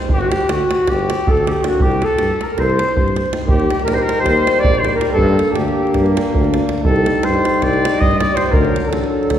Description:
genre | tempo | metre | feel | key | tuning
balkan folk, Balkan brass band | 320 BPM (eighths) | 9/8 | straight | C dorian sharp4 | A4 = 436 Hz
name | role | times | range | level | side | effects
davul | percussion | 0.0-9.4 s | none | -20 LUFS | right 1 dB | none
mellow cornet | melody | 0.1-9.4 s | F#4 to Eb5 | -19 LUFS | left 2 dB | none
mellow clarinet | second line | 0.1-9.4 s | F#4 to Eb5 | -22 LUFS | right 1 dB | none
warm tuba | bass | 0.1-9.4 s | G1 to G2 | -20 LUFS | equal | none
clear trombone | accompaniment | 1.6-9.4 s | F#3 to C4 | -24 LUFS | right 2 dB | none
warm euphonium | accompaniment | 1.6-9.4 s | D4 to Eb4 | -24 LUFS | left 3 dB | none
room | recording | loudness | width
wet scoring stage reverb, RT60 2.0 s | recorded in a church or concert hall | -13 LUFS | side -10 dB against mid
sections
0.0-3.5 A section; 3.5-9.4 B section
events
none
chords
0.1 G5; 1.8 C5; 3.5 Eb; 5.2 Gm; 6.9 Cm; 8.5 D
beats
| 0.10 0.29 0.48 0.67 0.86 1.05 1.23 1.42 1.61 | 1.80 1.99 2.17 2.36 2.55 2.74 2.92 3.11 3.30 | 3.49 3.67 3.86 4.05 4.24 4.42 4.61 4.80 4.99 | 5.17 5.36 5.55 5.73 5.92 6.11 6.29 6.48 6.67 | 6.86 7.04 7.23 7.42 7.60 7.79 7.98 8.16 8.35 | 8.54 8.72 8.91 9.10 9.28

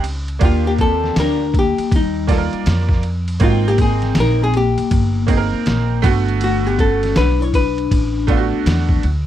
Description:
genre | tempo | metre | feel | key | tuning
hip hop, jazz-hop | 80 BPM | 4/4 | swing 65% on 16ths | unclear | A4 = 442 Hz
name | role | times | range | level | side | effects
bright upright piano | accompaniment | 0.0-9.1 s | D3 to G5 | -22 LUFS | right 10 dB | none
upright bass | bass | 0.0-9.3 s | G1 to F2 | -19 LUFS | equal | none
trip hop sampler-style drum kit | drums | 0.0-9.3 s | hi-hat, kick drum, ride cymbal, snare drum | -19 LUFS | equal | none
hollow-body jazz guitar | melody | 0.4-9.0 s | Eb4 to Db5 | -20 LUFS | equal | none
vibraphone with soft mallets | second line | 0.4-9.0 s | G3 to Fb4 | -22 LUFS | left 8 dB | none
room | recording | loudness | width
little or no reverb | dry, close 1970s-style studio recording, vinyl crackle | -14 LUFS | side -11 dB against mid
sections
0.0-9.3 A section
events
none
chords
0.4 Ebmaj9; 3.4 Abmaj9; 6.0 Gmaj9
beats
| 0.41 1.16 1.91 2.66 | 3.41 4.16 4.91 5.66 | 6.41 7.16 7.91 8.66

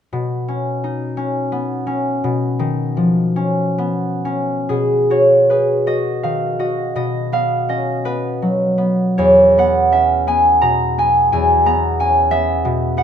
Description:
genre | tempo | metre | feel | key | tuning
classical, solo harp piece | 42-62 BPM (dotted quarters) | 6/8 | rubato | B major | A4 = 438 Hz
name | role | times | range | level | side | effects
concert harp | solo | 0.1-13.0 s | E2 to A#5 | -14 LUFS | equal | none
room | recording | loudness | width
moderate stone room reverb, RT60 1.4 s | minimal, uncompressed stereo recording | -14 LUFS | side -8 dB against mid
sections
0.1-4.7 A section; 4.7-13.0 B section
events
none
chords
0.1 Badd9; 4.7 B6; 7.0 G#m7/B (rootless); 9.2 E6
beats
| 0.13 1.20 | 2.25 3.38 | 4.71 5.88 | 6.98 8.06 | 9.18 10.27 | 11.32 12.30

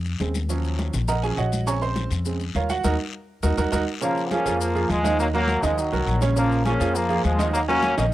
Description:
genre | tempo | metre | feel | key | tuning
latin, salsa | 204 BPM | 4/4 | straight | Bb minor | A4 = 440 Hz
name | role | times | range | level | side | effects
upright bass | bass | 0.0-8.1 s | Bb1 to F2 | -25 LUFS | left 1 dB | none
congas | percussion | 0.1-8.1 s | none | -32 LUFS | left 1 dB | none
maracas | percussion | 0.1-8.1 s | none | -38 LUFS | left 10 dB | none
clear baby grand piano | accompaniment | 0.2-8.1 s | Db3 to Db6 | -25 LUFS | right 5 dB | cassette tape
guiro | percussion | 0.2-8.1 s | none | -39 LUFS | left 8 dB | none
bright trombone section | melody | 4.0-8.1 s | Eb3 to Db4 | -23 LUFS | left 1 dB | cassette tape
room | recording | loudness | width
light reverb | home recording on cassette | -20 LUFS | side -15 dB against mid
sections
0.0-4.0 A section; 4.0-8.1 B section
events
grand piano solo 0.0-4.0; band accent 2.8-4.0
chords
0.5 Ebm7; 1.7 Bbm7; 2.8 Ebm; 4.0 Bbm7; 5.2 Ebm7; 6.4 Bbm7; 7.5 Ebm7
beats
0.20 | 0.49 0.79 1.08 1.38 | 1.67 1.96 2.26 2.55 | 2.85 3.14 3.43 3.73 | 4.02 4.31 4.61 4.90 | 5.19 5.49 5.78 6.07 | 6.37 6.66 6.95 7.24 | 7.54 7.83 8.12

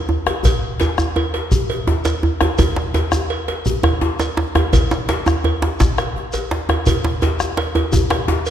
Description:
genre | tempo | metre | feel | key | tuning
west african traditional, West African drum ensemble | 112 BPM (dotted quarters) | 12/8 | straight | none | none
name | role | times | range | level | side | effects
djembe | percussion | 0.1-8.4 s | none | -25 LUFS | left 4 dB | none
djembe | percussion | 0.1-8.4 s | none | -18 LUFS | right 1 dB | none
bombo | percussion | 0.3-8.3 s | none | -21 LUFS | equal | none
cowbell | percussion | 0.3-8.5 s | none | -26 LUFS | right 5 dB | none
shekere | percussion | 0.4-8.5 s | none | -27 LUFS | left 3 dB | none
room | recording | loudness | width
wet scoring stage reverb, RT60 1.8 s | none | -16 LUFS | side -10 dB against mid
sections
0.0-8.5 A section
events
drum fill 6.2-6.9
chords
none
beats
| 0.44 0.98 1.52 2.05 | 2.59 3.13 3.66 4.20 | 4.73 5.27 5.80 6.33 | 6.87 7.40 7.93 8.47

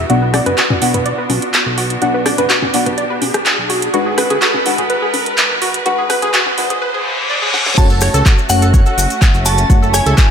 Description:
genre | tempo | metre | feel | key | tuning
progressive house | 125 BPM | 4/4 | straight | F# minor | A4 = 440 Hz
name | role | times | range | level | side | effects
bright symphonic string section | sustained chords | 0.0-10.3 s | G#3 to B4 | -23 LUFS | right 1 dB | vintage 12-bit sampler grit, sidechain pumping
wide unison pluck | arpeggios | 0.0-10.2 s | F#4 to F#5 | -20 LUFS | right 1 dB | sidechain pumping, dub echo
deep mellow chord stab | stabs | 0.0-10.3 s | G#2 to F#5 | -20 LUFS | left 2 dB | chorus, sidechain pumping, dub echo
fat analog bass | bass | 0.0-10.1 s | F#1 to D2 | -19 LUFS | equal | sidechain pumping
riser and reverse cymbal | sound effects | 0.0-7.8 s | none | -22 LUFS | left 1 dB | none
house drum kit | drums | 0.1-10.3 s | crash cymbal, handclaps, hi-hat, rim click, snare drum | -17 LUFS | right 1 dB | none
electronic congas and toms | percussion | 0.3-6.8 s | none | -23 LUFS | left 4 dB | sidechain pumping on perc, sidechain pumping on toms
glassy synth bell | melody | 7.8-10.3 s | F#5 to A5 | -20 LUFS | left 1 dB | chorus, tremolo, dub echo
airy dreamy lead | second line | 7.8-10.3 s | F#5 to A5 | -25 LUFS | equal | chorus, cassette tape, sidechain pumping, dub echo
electronic kick drum | drums | 7.8-10.3 s | none | -10 LUFS | equal | none
maracas | percussion | 7.8-10.3 s | none | -22 LUFS | left 5 dB | none
room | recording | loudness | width
moderate concert hall reverb, RT60 2.1 s | high-pass filter | -11 LUFS | side -7 dB against mid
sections
0.0-7.8 A section; 7.8-10.3 B section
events
build-up 0.0-7.8; riser 0.0-7.8; filter sweep on synth pluck 0.0-7.8; filter sweep on synth stab 0.0-7.8; filter sweep 0.0-7.8; reverse cymbal 6.8-7.8; drum fill 7.5; drop 7.8-10.3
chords
0.1 Bm; 3.9 G#m7b5; 7.8 F#m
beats
| 0.10 0.58 1.06 1.54 | 2.02 2.50 2.98 3.46 | 3.94 4.42 4.90 5.38 | 5.86 6.34 6.82 7.30 | 7.78 8.26 8.74 9.22 | 9.70 10.18

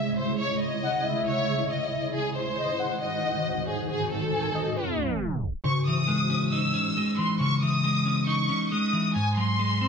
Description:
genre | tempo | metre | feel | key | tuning
hip hop | 137 BPM | 4/4 | half-time | C# harmonic minor | A4 = 440 Hz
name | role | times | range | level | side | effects
warm studio violin section | melody | 0.0-9.9 s | G#4 to E6 | -28 LUFS | left 1 dB | low-pass filter, ping-pong delay
warm velvety synth lead | second line | 0.0-5.2 s | B#4 to G#5 | -32 LUFS | left 2 dB | chorus, ping-pong delay
granular cloud pad | sustained chords | 0.0-5.6 s | G#2 to C#5 | -30 LUFS | right 1 dB | built-in reverb, ensemble chorus
clean electric guitar | accompaniment | 5.6-9.9 s | G#2 to D#4 | -24 LUFS | left 1 dB | low-pass filter
room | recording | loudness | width
wet plate reverb, RT60 1.6 s, small room ambience | dreamy mix soaked in reverb, tape stop | -24 LUFS | side -6 dB against mid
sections
0.0-5.6 A section; 5.6-9.9 B section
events
tape stop 4.8-5.6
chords
0.0 C#madd9; 2.1 G#7; 5.6 C#madd9; 9.2 G#7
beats
| 0.39 0.83 1.27 1.71 | 2.14 2.58 3.02 3.46 | 3.90 4.33 4.77 5.21 | 5.65 6.08 6.52 6.96 | 7.40 7.84 8.27 8.71 | 9.15 9.59

